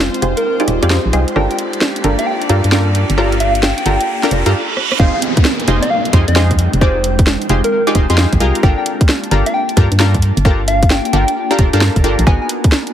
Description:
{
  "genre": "UK garage, two-step garage",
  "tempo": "132 BPM",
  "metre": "4/4",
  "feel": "swing 65% on 16ths",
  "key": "unclear",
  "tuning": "A4 = 436 Hz",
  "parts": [
    { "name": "ethereal airy pad", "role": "sustained chords", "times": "0.0-12.9 s", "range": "Ab3 to A5", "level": "-25 LUFS", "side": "equal", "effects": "ensemble chorus, built-in reverb, sidechain pumping" },
    { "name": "organ-like FM bass", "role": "bass", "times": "0.0-12.4 s", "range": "Eb1 to G2", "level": "-15 LUFS", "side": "equal", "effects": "tube saturation, sidechain pumping" },
    { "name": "garage drum kit", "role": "drums", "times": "0.0-12.9 s", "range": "hi-hat, rim click, snare drum", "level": "-18 LUFS", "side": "right 1 dB", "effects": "overdrive" },
    { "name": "riser, reverse cymbal and downlifter", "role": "sound effects", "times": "0.8-8.6 s", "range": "none", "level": "-24 LUFS", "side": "right 3 dB", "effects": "none" },
    { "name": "rich chamber string section", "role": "texture", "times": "0.0-4.5 s", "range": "F4 to D5", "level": "-26 LUFS", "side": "left 2 dB", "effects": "sidechain pumping" },
    { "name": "punchy chord stab", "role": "stabs", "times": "0.2-12.9 s", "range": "Cb4 to D5", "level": "-18 LUFS", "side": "equal", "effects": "chorus, tape echo" },
    { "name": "soft struck synth lead", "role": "melody", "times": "0.4-12.5 s", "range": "Bb4 to Ab5", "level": "-20 LUFS", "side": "equal", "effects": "chorus, tape echo" },
    { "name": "electronic kick drum", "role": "drums", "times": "5.0-12.7 s", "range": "none", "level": "-12 LUFS", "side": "equal", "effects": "overdrive" }
  ],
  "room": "light reverb",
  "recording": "heavily compressed radio sound",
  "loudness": "-11 LUFS",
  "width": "side -10 dB against mid",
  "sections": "0.0-5.0 A section; 5.0-12.9 B section",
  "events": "build-up 0.0-5.0; riser 0.8-4.5; filter sweep on ambient pad 0.0-5.0; reverse cymbal 4.1-5.0; drum fill 4.8; drop 5.0-12.9",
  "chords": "0.0 Fm9; 1.4 Gm9; 5.0 Fm9; 8.6 Gm9; 12.3 Abm9"
}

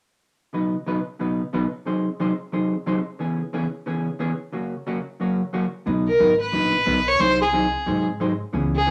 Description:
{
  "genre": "country, western swing",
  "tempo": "180 BPM",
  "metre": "4/4",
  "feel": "swing 62% on 8ths",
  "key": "B major",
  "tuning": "A4 = 440 Hz",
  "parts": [
    { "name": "vintage hollow-body jazz guitar", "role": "accompaniment", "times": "0.5-8.9 s", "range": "F#2 to B#4", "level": "-26 LUFS", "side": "equal", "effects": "none" },
    { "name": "upright bass", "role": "bass", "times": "5.9-8.9 s", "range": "G#1 to G#2", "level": "-30 LUFS", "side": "equal", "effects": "none" },
    { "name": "dark fiddle", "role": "melody", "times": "6.1-8.9 s", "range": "G#4 to C#5", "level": "-21 LUFS", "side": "equal", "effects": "none" }
  ],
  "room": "wet studio reverb, RT60 0.6 s",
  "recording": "none",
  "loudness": "-23 LUFS",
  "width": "mono",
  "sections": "0.5-5.9 A section; 5.9-8.9 B section",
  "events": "none",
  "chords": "0.5 Badd9; 1.9 G#7/B#; 3.2 C#m7; 4.5 F#; 5.9 Badd9; 7.2 G#7/B#"
}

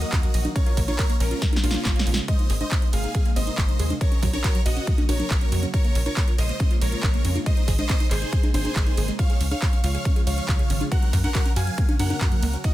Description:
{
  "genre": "uplifting trance",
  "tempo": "139 BPM",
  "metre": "4/4",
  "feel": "straight",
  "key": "unclear",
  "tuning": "A4 = 440 Hz",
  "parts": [
    { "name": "big supersaw lead", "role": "melody", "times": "0.0-12.7 s", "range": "Db4 to Ab5", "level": "-31 LUFS", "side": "right 1 dB", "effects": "sidechain pumping, tape echo" },
    { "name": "warm grand piano", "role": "second line", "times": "0.0-12.7 s", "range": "F4 to Ab5", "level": "-38 LUFS", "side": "right 1 dB", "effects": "sidechain pumping, tape echo" },
    { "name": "wide unison pluck", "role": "arpeggios", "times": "0.0-12.7 s", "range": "Gb3 to Eb5", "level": "-34 LUFS", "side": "right 2 dB", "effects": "sidechain pumping, tape echo" },
    { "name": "tight sequencer bass", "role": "bass", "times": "0.0-12.6 s", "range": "Ab1 to Gb2", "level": "-25 LUFS", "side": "equal", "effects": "sidechain pumping" },
    { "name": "big-room dance drum kit", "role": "drums", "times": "0.0-12.7 s", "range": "congas, handclaps, hi-hat, ride cymbal, snare drum", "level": "-30 LUFS", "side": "equal", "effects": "sidechain pumping on hats, studio reverb, sidechain pumping on cymbals, sidechain pumping on perc" },
    { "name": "electronic kick drum", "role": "drums", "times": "0.1-12.7 s", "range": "none", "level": "-21 LUFS", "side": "equal", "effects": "studio reverb" }
  ],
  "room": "digital ambience",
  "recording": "none",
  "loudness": "-20 LUFS",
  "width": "side -15 dB against mid",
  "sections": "0.0-12.7 A section",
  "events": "drum fill 1.4-2.3",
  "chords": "0.0 Ebm; 0.6 Bbm7; 2.3 Abadd9; 4.0 Gb/Bb; 5.7 Bbm7; 7.5 Abadd9; 9.2 Db; 10.9 Gb"
}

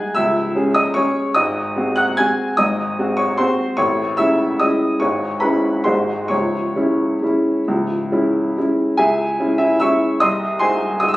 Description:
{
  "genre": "classical, piano waltz",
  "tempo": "128-157 BPM",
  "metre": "3/4",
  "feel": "rubato",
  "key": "C# minor",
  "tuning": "A4 = 438 Hz",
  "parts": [
    { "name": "bright upright piano", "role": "solo", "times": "0.0-11.2 s", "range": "C#1 to G#6", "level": "-16 LUFS", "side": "equal", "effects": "none" }
  ],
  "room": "wet recital hall reverb, RT60 1.4 s",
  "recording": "recorded on a phone in the room, studio ambience",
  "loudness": "-16 LUFS",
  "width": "side -17 dB against mid",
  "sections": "0.0-9.0 A section; 9.0-11.2 B section",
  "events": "none",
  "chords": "0.2 C#m; 1.4 G#7; 3.8 Amaj7; 5.0 C#m/G#; 5.9 G#7; 6.3 C#m; 10.2 G#7/B#"
}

